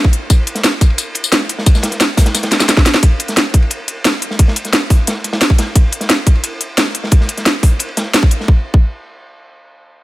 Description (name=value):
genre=drum and bass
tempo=176 BPM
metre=4/4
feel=straight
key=none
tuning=none
part: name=electronic kick drum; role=drums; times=0.0-8.8 s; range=none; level=-10 LUFS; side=equal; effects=none
part: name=drum and bass drum kit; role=drums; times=0.1-8.4 s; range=hi-hat, snare drum, tambourine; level=-14 LUFS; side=equal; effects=none
part: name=crunchy breakbeat drum kit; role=drums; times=0.3-8.5 s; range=ride cymbal, snare drum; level=-22 LUFS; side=equal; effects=high-pass filter on cymbals, high-pass filter on hats, high-pass filter on snare, high-pass filter on room
room=little or no reverb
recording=none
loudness=-11 LUFS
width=side -17 dB against mid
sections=0.0-3.0 A section; 3.0-8.5 B section; 8.5-9.8 C section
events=drop 0.0-3.0; drum fill 2.5-3.0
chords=none